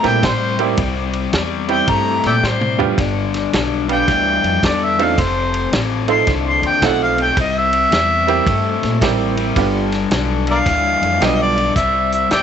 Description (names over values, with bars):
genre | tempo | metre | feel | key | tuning
electric blues shuffle | 109 BPM | 4/4 | swing 65% on 8ths | C major | A4 = 440 Hz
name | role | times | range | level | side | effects
mellow harmonica | melody | 0.0-12.4 s | Bb4 to C6 | -17 LUFS | equal | overdrive
bright upright piano | accompaniment | 0.0-11.5 s | G3 to F5 | -20 LUFS | right 12 dB | none
raw garage guitar | riff | 0.0-12.4 s | F2 to A3 | -21 LUFS | left 11 dB | overdrive
upright bass | bass | 0.0-12.4 s | F1 to Bb2 | -22 LUFS | right 1 dB | none
warm soul drum kit | drums | 0.0-12.4 s | hi-hat, kick drum, ride cymbal, snare drum, toms | -22 LUFS | equal | none
room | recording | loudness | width
light reverb, studio reverb | 1960s-style stereo with parts hard left and right, nothing above 8.0 kHz | -14 LUFS | side -8 dB against mid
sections
0.0-11.8 A section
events
harmonica solo 0.0-11.8; drum fill 2.4-3.0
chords
0.0 C7; 3.0 G7; 5.2 F7; 7.4 C7; 9.6 G7; 11.8 C